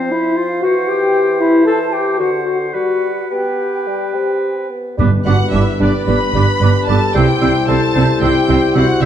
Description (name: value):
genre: quick classical-period movement for symphony orchestra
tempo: 110 BPM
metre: 4/4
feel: uneven beats, rubato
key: G major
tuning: A4 = 440 Hz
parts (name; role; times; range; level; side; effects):
- clear oboe; second line; 0.0-9.1 s; B4 to C5; -26 LUFS; equal; none
- mellow clarinet; second line; 0.0-9.1 s; C4 to B4; -20 LUFS; left 2 dB; none
- mellow hollow small flute group; second line; 0.0-9.1 s; C5 to E6; -26 LUFS; right 3 dB; none
- mellow bassoon; accompaniment; 0.0-9.1 s; D3 to C4; -23 LUFS; right 1 dB; none
- mellow French horn section; sustained chords; 0.1-9.1 s; G3 to A4; -19 LUFS; left 3 dB; none
- rich chamber viola section; accompaniment; 5.0-9.1 s; B3 to E4; -21 LUFS; right 1 dB; none
- mellow trumpet section; stabs; 5.0-9.1 s; B4 to C5; -24 LUFS; equal; none
- clear chamber double bass section; bass; 5.0-9.1 s; G1 to C2; -18 LUFS; right 3 dB; none
- rich studio cello section; bass; 5.0-9.1 s; G2 to C3; -19 LUFS; right 3 dB; none
- timpani; percussion; 5.0-5.8 s; G2; -22 LUFS; left 1 dB; none
- rich chamber violin section; melody; 5.3-9.1 s; D5 to B5; -21 LUFS; left 1 dB; none
- rich chamber violin section; second line; 5.3-9.0 s; D5 to B5; -26 LUFS; left 3 dB; none
room: wet recital hall reverb, RT60 1.6 s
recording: dark, warm production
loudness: -12 LUFS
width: side -9 dB against mid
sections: 0.0-5.0 A section; 5.0-9.1 B section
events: none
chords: 0.0 F5; 0.6 C/E; 2.2 D7; 2.8 G; 7.2 C